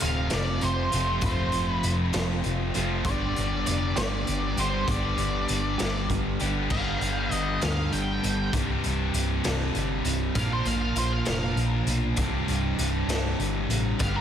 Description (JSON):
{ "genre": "quiet-loud alternative rock", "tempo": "66 BPM (dotted quarters)", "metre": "6/8", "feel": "straight", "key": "unclear", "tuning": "A4 = 440 Hz", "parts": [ { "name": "octave-fuzz lead guitar", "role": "melody", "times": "0.0-14.2 s", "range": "Bb4 to G5", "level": "-32 LUFS", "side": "equal", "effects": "distortion, digital delay" }, { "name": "clean electric guitar", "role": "arpeggios", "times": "0.0-14.2 s", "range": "C2 to Bb4", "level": "-34 LUFS", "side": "right 5 dB", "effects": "slapback echo" }, { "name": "fuzz guitar", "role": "riff", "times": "0.0-14.2 s", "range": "C2 to Bb4", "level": "-29 LUFS", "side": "left 1 dB", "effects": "distortion" }, { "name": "hollow-body short-scale fingered electric bass", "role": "bass", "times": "0.0-14.2 s", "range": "C1 to D2", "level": "-29 LUFS", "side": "equal", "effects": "none" }, { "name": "raw garage drum kit", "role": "drums", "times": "0.0-14.1 s", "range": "crash cymbal, hi-hat, kick drum, snare drum", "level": "-31 LUFS", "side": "left 1 dB", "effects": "none" } ], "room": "moderate lush hall reverb, RT60 1.9 s, small room ambience", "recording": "big arena sound", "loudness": "-24 LUFS", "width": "side -9 dB against mid", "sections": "0.0-6.7 A section; 6.7-14.2 B section", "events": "lead electric guitar solo 6.7-14.2", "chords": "0.0 F; 3.1 G; 8.5 Csus2; 10.4 Bb; 12.2 Csus2" }